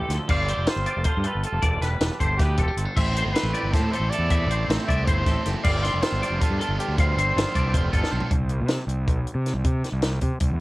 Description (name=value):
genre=math rock and midwest emo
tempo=314 BPM (eighths)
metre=7/8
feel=straight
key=C major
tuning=A4 = 440 Hz
part: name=warm trumpet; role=melody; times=0.0-8.1 s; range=G4 to E5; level=-30 LUFS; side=equal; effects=cassette tape
part: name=twangy electric guitar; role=accompaniment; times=0.0-9.7 s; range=A2 to C5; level=-34 LUFS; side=right 6 dB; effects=spring reverb, cassette tape
part: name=twangy electric guitar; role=arpeggios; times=0.0-8.3 s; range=A4 to C6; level=-29 LUFS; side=left 3 dB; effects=ensemble chorus, cassette tape
part: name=fuzz fingered electric bass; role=bass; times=0.1-10.6 s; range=E1 to C3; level=-25 LUFS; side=equal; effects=overdrive
part: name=compact cocktail drum kit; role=drums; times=0.1-10.5 s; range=crash cymbal, hi-hat, kick drum, snare drum, toms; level=-25 LUFS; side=equal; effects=none
part: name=biting overdriven guitar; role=riff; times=3.0-8.3 s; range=G2 to E4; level=-31 LUFS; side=right 2 dB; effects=cassette tape
room=little or no reverb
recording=home recording on cassette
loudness=-21 LUFS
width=side -19 dB against mid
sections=0.0-8.3 A section; 8.3-10.6 B section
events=drum fill 8.0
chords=0.3 G7sus4; 1.6 Em7; 3.0 Am7; 5.6 G7sus4; 8.3 C5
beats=0.10 | 0.29 0.48 0.67 0.86 1.05 1.25 1.44 | 1.63 1.82 2.01 2.20 2.39 2.58 2.77 | 2.96 3.16 3.35 3.54 3.73 3.92 4.11 | 4.30 4.49 4.68 4.87 5.06 5.25 5.45 | 5.64 5.83 6.02 6.21 6.40 6.59 6.78 | 6.97 7.16 7.35 7.54 7.73 7.92 8.11 | 8.30 8.50 8.69 8.88 9.07 9.26 9.45 | 9.64 9.84 10.03 10.22 10.41 10.60